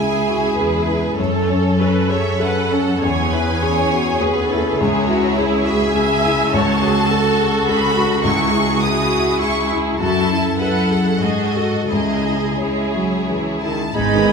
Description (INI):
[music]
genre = classical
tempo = 84-108 BPM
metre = 3/4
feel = rubato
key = C# minor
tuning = A4 = 440 Hz
[part]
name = rich studio violin section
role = melody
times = 0.0-14.3 s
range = B4 to D#6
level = -24 LUFS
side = left 1 dB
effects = none
[part]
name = warm grand piano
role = melody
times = 0.0-14.3 s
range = C#2 to A4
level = -19 LUFS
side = left 2 dB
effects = none
[part]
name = rich studio violin section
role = second line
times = 0.0-14.3 s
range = C#4 to D#5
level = -23 LUFS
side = right 1 dB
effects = none
[part]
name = clear studio viola section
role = accompaniment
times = 0.0-14.3 s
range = G#3 to E5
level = -23 LUFS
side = right 2 dB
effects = none
[part]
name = warm studio cello section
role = bass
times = 0.0-14.3 s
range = C#2 to G#3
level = -24 LUFS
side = right 3 dB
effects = none
[part]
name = mellow bassoon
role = accompaniment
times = 13.9-14.3 s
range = G#3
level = -22 LUFS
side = right 8 dB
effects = none
[part]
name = concert flute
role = second line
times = 14.0-14.3 s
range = G#6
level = -23 LUFS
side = right 8 dB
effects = none
[part]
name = dark French horn section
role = sustained chords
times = 14.0-14.3 s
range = B3 to G#4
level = -20 LUFS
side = right 5 dB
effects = none
[part]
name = rich studio double bass section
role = bass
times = 14.0-14.3 s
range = G#1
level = -23 LUFS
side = right 6 dB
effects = none
[sound]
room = wet scoring stage reverb, RT60 2.0 s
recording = minimal, uncompressed stereo recording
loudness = -15 LUFS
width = side -5 dB against mid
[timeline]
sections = 0.0-14.0 A section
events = none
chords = 0.0 C#m; 1.2 F#m; 3.0 C#m/E; 4.8 C#m; 6.5 F#m/C#; 8.2 C#m; 10.0 F#m7; 11.2 G#5; 11.9 C#m